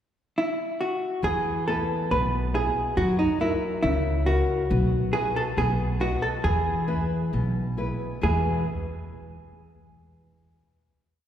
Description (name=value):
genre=fado-style ballad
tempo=69 BPM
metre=2/4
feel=rubato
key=E major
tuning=A4 = 440 Hz
part: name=vintage hollow-body jazz guitar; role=melody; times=0.4-8.6 s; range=D#4 to B4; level=-26 LUFS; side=right 1 dB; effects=none
part: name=nylon-string guitar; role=accompaniment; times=1.2-8.6 s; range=E2 to D#5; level=-30 LUFS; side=left 2 dB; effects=none
part: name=upright bass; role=bass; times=1.2-8.6 s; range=B1 to F#2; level=-27 LUFS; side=equal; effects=none
room=wet concert hall reverb, RT60 2.5 s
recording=heard from further back in the room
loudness=-23 LUFS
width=side -10 dB against mid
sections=0.0-1.2 pickup bar; 1.2-8.2 A section; 8.2-10.0 final chord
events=none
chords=0.0 N.C.; 1.2 E; 3.0 F#7; 4.7 Bsus4; 5.6 B; 6.4 E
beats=0.36 | 1.24 2.11 | 2.97 3.84 | 4.71 5.57 | 6.44 7.33 | 8.23